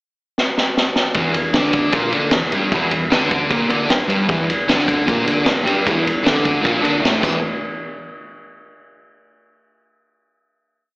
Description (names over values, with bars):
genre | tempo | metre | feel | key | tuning
garage rock duo or trio | 153 BPM | 4/4 | straight | unclear | A4 = 439 Hz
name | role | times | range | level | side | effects
vintage drum kit | drums | 0.4-7.3 s | crash cymbal, kick drum, ride cymbal, snare drum | -18 LUFS | equal | none
overdriven fingered electric bass | bass | 1.1-7.4 s | E1 to D2 | -29 LUFS | equal | none
fuzz guitar | riff | 1.2-7.4 s | E2 to D4 | -18 LUFS | equal | distortion, slapback echo
room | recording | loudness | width
light reverb | live gig heard through the venue's PA, recital hall reverb, AM radio sound | -15 LUFS | side -34 dB against mid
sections
0.0-1.1 pickup bar; 1.1-7.4 riff; 7.4-9.0 final hit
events
drum fill 0.4-1.1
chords
0.0 N.C.; 1.1 Em7b5; 7.2 E5; 7.4 N.C.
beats
0.37 0.76 | 1.15 1.54 1.93 2.32 | 2.71 3.11 3.50 3.89 | 4.29 4.68 5.07 5.46 | 5.86 6.25 6.64 7.03